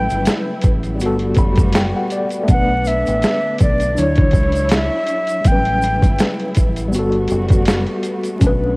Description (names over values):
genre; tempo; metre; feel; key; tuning
lo-fi hip hop; 81 BPM; 4/4; swing 57% on 16ths; unclear; A4 = 438 Hz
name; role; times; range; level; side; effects
breathy concert flute; melody; 0.0-6.2 s; C#5 to G5; -20 LUFS; equal; cassette tape, tape echo
tine electric piano; accompaniment; 0.0-8.8 s; F#3 to B5; -21 LUFS; left 1 dB; medium tremolo, cassette tape
warm studio string section; sustained chords; 0.0-8.8 s; C#3 to C#5; -27 LUFS; equal; cassette tape
deep dub fingered electric bass; bass; 0.0-8.8 s; F#1 to D2; -21 LUFS; equal; none
boom bap sampler-style drum kit; drums; 0.1-8.6 s; hi-hat, kick drum, snare drum; -16 LUFS; equal; overdrive, cassette tape
tube shaker; percussion; 0.1-8.6 s; none; -39 LUFS; right 2 dB; none
room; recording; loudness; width
light reverb, small room ambience; home recording on cassette, vinyl crackle; -14 LUFS; side -27 dB against mid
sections
0.0-8.8 A section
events
none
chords
0.0 A13; 1.0 Gmaj9; 2.5 Bm7; 4.0 Dmaj9; 5.4 A13; 6.9 Gmaj9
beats
0.26 1.00 1.74 | 2.48 3.23 3.97 4.71 | 5.45 6.19 6.93 7.67 | 8.41